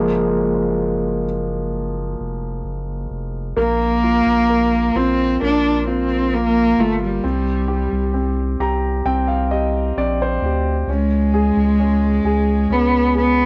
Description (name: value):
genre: pop ballad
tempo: 66 BPM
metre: 4/4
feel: straight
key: unclear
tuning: A4 = 440 Hz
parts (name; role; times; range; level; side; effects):
- clear grand piano; accompaniment; 0.0-13.5 s; F3 to Bb5; -24 LUFS; equal; cassette tape
- saturated sub bass; bass; 0.0-13.5 s; F1 to D2; -25 LUFS; equal; none
- dark cello; melody; 3.6-13.5 s; G3 to D4; -19 LUFS; equal; cassette tape
room: moderate small room reverb, RT60 0.5 s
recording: home recording on cassette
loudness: -19 LUFS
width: mono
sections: 0.0-3.6 A section; 3.6-13.5 B section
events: grand piano solo 0.0-3.6; grand piano fill 8.1-10.9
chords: 0.0 Gbmaj7; 3.6 Bb5; 7.2 C5; 10.9 Db5